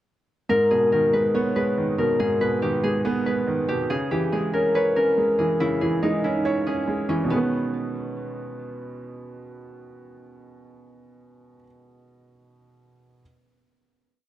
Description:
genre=hip hop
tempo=141 BPM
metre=4/4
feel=half-time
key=G# minor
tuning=A4 = 440 Hz
part: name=concert harp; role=melody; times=0.5-10.4 s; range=B3 to C#5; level=-23 LUFS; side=left 1 dB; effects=none
part: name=felt-muted upright piano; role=accompaniment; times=0.5-13.2 s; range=G#2 to C#5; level=-25 LUFS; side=right 2 dB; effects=none
room=light reverb, studio ambience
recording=none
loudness=-20 LUFS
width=side -13 dB against mid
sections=0.5-7.3 hook; 7.3-10.7 final chord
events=none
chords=0.5 G#m; 3.9 C#m; 7.3 G#m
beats=| 0.49 0.92 1.34 1.77 | 2.20 2.62 3.05 3.47 | 3.90 4.32 4.75 5.17 | 5.60 6.03 6.45 6.88 | 7.30 7.73 8.15 8.58 | 9.01 9.43 9.86 10.28

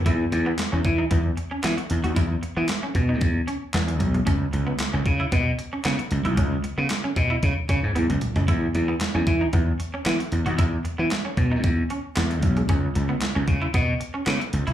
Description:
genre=early-eighties boogie funk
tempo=114 BPM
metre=4/4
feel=straight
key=E major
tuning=A4 = 441 Hz
part: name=semi-hollow electric guitar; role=riff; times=0.1-14.7 s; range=G#3 to F#4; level=-31 LUFS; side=right 3 dB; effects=ensemble chorus, slapback echo
part: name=gritty slap bass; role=bass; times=0.1-14.7 s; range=B1 to E3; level=-22 LUFS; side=equal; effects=overdrive
part: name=crisp 8-bit digital drum machine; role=drums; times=0.1-14.7 s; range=handclaps, hi-hat, kick drum, snare drum, toms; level=-25 LUFS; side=equal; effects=overdrive
room=little or no reverb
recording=live gig heard through the venue's PA, club reverb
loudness=-21 LUFS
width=side -11 dB against mid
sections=0.1-14.7 A section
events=drum fill 8.0-8.5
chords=0.1 E5; 4.3 C#7(no3); 8.5 E5; 12.7 C#7(no3)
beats=| 0.06 0.59 1.11 1.64 | 2.17 2.69 3.22 3.74 | 4.27 4.80 5.32 5.85 | 6.38 6.90 7.43 7.96 | 8.48 9.01 9.53 10.06 | 10.59 11.11 11.64 12.16 | 12.69 13.22 13.74 14.27

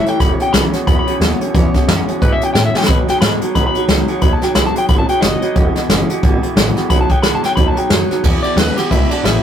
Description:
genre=rockabilly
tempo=179 BPM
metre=4/4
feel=swing 59% on 8ths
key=E major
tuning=A4 = 441 Hz
part: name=electric guitar at the edge of break-up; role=melody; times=0.0-9.4 s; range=D4 to B5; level=-19 LUFS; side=left 2 dB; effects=none
part: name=picked steel-string acoustic guitar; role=accompaniment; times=0.0-9.4 s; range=C#3 to C#5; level=-25 LUFS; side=equal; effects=none
part: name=electric guitar through a small old amp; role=riff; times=0.0-9.4 s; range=E2 to G#3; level=-19 LUFS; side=right 2 dB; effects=none
part: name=upright bass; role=bass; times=0.0-9.4 s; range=E1 to B2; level=-20 LUFS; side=equal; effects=none
part: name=jazz brush drum kit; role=drums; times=0.1-9.3 s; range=hi-hat, kick drum, ride cymbal, snare drum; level=-15 LUFS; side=equal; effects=none
room=light reverb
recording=rough rehearsal-room recording, tube saturation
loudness=-12 LUFS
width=side -9 dB against mid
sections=0.0-8.2 A section; 8.2-9.4 B section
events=drum fill 2.7; clean electric guitar solo 8.2-9.4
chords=0.0 E6; 2.9 B6; 5.6 E6; 6.9 B6; 8.2 E6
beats=| 0.20 0.53 0.87 1.20 | 1.54 1.88 2.21 2.55 | 2.88 3.22 3.55 3.89 | 4.22 4.56 4.89 5.22 | 5.56 5.89 6.23 6.56 | 6.90 7.23 7.57 7.90 | 8.24 8.57 8.91 9.24

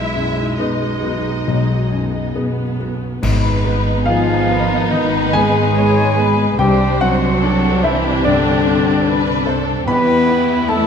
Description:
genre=cinematic, emotional film score for orchestra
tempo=67-74 BPM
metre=4/4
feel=rubato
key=unclear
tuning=A4 = 440 Hz
part: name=warm symphonic violin section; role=melody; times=0.0-10.9 s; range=D4 to E5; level=-26 LUFS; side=left 4 dB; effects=none
part: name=clear clarinet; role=second line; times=0.0-10.9 s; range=G#3 to B4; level=-23 LUFS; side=equal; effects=none
part: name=dark symphonic violin section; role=second line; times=0.0-10.9 s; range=G4 to E5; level=-25 LUFS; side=left 3 dB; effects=none
part: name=warm grand piano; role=accompaniment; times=0.0-10.9 s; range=B1 to B5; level=-21 LUFS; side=left 2 dB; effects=none
part: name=warm symphonic viola section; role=accompaniment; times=0.0-10.9 s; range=F#3 to D#4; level=-24 LUFS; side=right 2 dB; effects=none
part: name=mellow French horn section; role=sustained chords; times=0.0-10.9 s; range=D3 to F#4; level=-22 LUFS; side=left 3 dB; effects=none
part: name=concert harp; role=arpeggios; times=0.0-10.9 s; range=G#2 to D#5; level=-25 LUFS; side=left 8 dB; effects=none
part: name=warm chamber double bass section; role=bass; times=0.0-10.9 s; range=G#1 to E2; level=-22 LUFS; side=right 4 dB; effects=none
part: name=warm symphonic cello section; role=bass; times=0.0-10.9 s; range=D3 to E4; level=-24 LUFS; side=right 4 dB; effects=none
part: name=clash cymbals and concert bass drum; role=percussion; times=3.2-4.9 s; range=none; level=-24 LUFS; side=right 1 dB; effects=none
part: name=silver concert flute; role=second line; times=4.1-10.9 s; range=D5 to B5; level=-24 LUFS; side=equal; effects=none
room=moderate scoring stage reverb, RT60 1.8 s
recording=close, detailed microphones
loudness=-14 LUFS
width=side -7 dB against mid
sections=0.0-3.2 A section; 3.2-10.9 B section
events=band accent 3.2-4.1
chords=0.0 B6; 3.2 G#m; 6.6 Csus2; 9.9 Em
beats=0.59 1.48 2.36 | 3.23 4.06 4.91 5.76 | 6.59 7.43 8.25 9.06 | 9.87 10.69

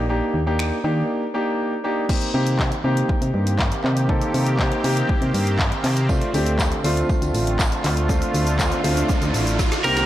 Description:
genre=dance-pop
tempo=120 BPM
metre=4/4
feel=straight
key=C dorian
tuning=A4 = 441 Hz
part: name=warm baby grand piano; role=accompaniment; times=0.0-10.0 s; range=A3 to A4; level=-24 LUFS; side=equal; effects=sidechain pumping
part: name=solid FM bass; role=bass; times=0.0-10.0 s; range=A1 to Eb3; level=-22 LUFS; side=equal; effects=sidechain pumping
part: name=deep house drum kit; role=drums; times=0.6-10.1 s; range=crash cymbal, finger snaps, handclaps, hi-hat, kick drum, shaker, snare drum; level=-23 LUFS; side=equal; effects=soft clipping on snare
part: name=sweeping resonant pad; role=sustained chords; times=2.1-10.1 s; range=D3 to G4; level=-27 LUFS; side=right 1 dB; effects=chorus, sidechain pumping
part: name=tambourine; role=percussion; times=6.1-10.0 s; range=none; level=-39 LUFS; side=right 8 dB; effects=none
part: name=riser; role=sound effects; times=7.8-10.1 s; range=none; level=-30 LUFS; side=right 2 dB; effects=none
part: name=twelve-string electric guitar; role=melody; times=9.8-10.1 s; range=Bb4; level=-18 LUFS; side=right 2 dB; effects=spring reverb
room=light reverb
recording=blown-out, overdriven recording, overdrive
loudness=-18 LUFS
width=side -13 dB against mid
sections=0.0-2.1 A section; 2.1-10.1 B section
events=break 1.1-2.1; riser 7.8-10.1; drum fill 9.6-10.1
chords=0.0 Ebmaj7; 2.1 Cm7; 6.1 Dm7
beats=| 0.09 0.59 1.09 1.59 | 2.09 2.59 3.09 3.59 | 4.09 4.59 5.09 5.59 | 6.09 6.59 7.09 7.59 | 8.09 8.59 9.09 9.59

